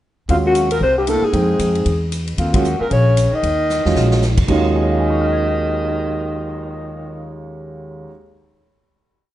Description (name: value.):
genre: jazz, small-group swing and bop.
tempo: 229 BPM.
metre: 4/4.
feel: swing 59% on 8ths.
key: Eb minor.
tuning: A4 = 440 Hz.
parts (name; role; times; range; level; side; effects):
breathy alto saxophone; melody; 0.3-7.3 s; F4 to Eb5; -20 LUFS; left 2 dB; none.
warm baritone saxophone; second line; 0.3-7.3 s; F2 to Eb3; -26 LUFS; right 3 dB; none.
warm baby grand piano; accompaniment; 0.3-8.3 s; Eb2 to Ab6; -22 LUFS; right 3 dB; none.
upright bass; bass; 0.3-8.0 s; Bb1 to F2; -20 LUFS; equal; none.
swinging big-band drum kit; drums; 0.3-6.5 s; crash cymbal, cymbal swell, hi-hat, kick drum, ride cymbal, snare drum; -24 LUFS; equal; none.
room: moderate plate reverb, RT60 1.3 s, small room ambience.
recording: rough home demo mix, nothing above 10.7 kHz.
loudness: -15 LUFS.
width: side -13 dB against mid.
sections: 0.3-4.5 A section; 4.5-6.6 final chord.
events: band accent 2.5; drum fill 3.7-4.2.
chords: 0.3 Ebm11; 0.8 C7; 1.3 Fm9; 1.9 N.C.; 2.4 Ebm11.